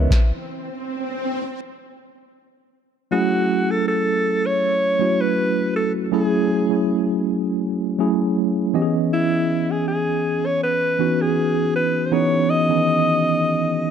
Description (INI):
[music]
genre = R&B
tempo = 80 BPM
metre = 4/4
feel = swing 54% on 16ths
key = F# dorian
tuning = A4 = 441 Hz
[part]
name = mellow tine electric piano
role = accompaniment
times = 0.0-13.9 s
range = D#3 to E5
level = -20 LUFS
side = right 1 dB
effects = medium stereo tremolo
[part]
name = direct-recorded clean electric guitar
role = arpeggios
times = 0.0-0.7 s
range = C#3 to D#4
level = -34 LUFS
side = left 9 dB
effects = lush chorus, digital delay
[part]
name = swell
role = sound effects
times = 0.3-1.6 s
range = none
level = -29 LUFS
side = right 1 dB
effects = none
[part]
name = small celesta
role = texture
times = 0.0-0.8 s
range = none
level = barely audible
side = none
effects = none
[part]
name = warm alto saxophone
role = melody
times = 3.1-13.9 s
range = E4 to D#5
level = -20 LUFS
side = equal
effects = digital delay
[sound]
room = light reverb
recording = dark, warm production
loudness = -18 LUFS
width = side -8 dB against mid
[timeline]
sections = 0.0-3.1 A section; 3.1-13.9 B section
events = stop 0.1-3.1; swell 0.3-3.1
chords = 0.0 C#m9; 3.1 F#m9; 8.7 C#m9